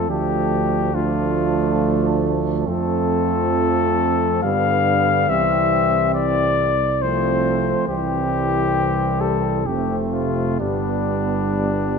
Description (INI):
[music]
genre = classical, brass quintet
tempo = 68 BPM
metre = 3/4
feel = uneven beats, rubato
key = C major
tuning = A4 = 441 Hz
[part]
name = mellow trumpet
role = melody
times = 0.0-12.0 s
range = D4 to F5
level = -21 LUFS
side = left 6 dB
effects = none
[part]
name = mellow flugelhorn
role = second line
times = 0.0-12.0 s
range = B3 to D4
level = -26 LUFS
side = right 8 dB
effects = none
[part]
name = clear French horn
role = accompaniment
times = 0.0-12.0 s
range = G3 to A3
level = -26 LUFS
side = left 3 dB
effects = none
[part]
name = warm trombone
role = accompaniment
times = 0.0-12.0 s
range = G2 to F3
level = -25 LUFS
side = right 7 dB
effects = none
[part]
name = mellow bass trombone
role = bass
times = 0.0-12.0 s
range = F1 to G2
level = -24 LUFS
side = right 2 dB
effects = none
[sound]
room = moderate concert hall reverb, RT60 2.1 s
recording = none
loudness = -17 LUFS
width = side -5 dB against mid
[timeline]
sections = 0.0-12.0 A section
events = none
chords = 0.1 Dm; 2.7 F; 4.4 G7; 5.3 C; 7.0 F/C; 7.9 C; 9.7 F; 10.6 G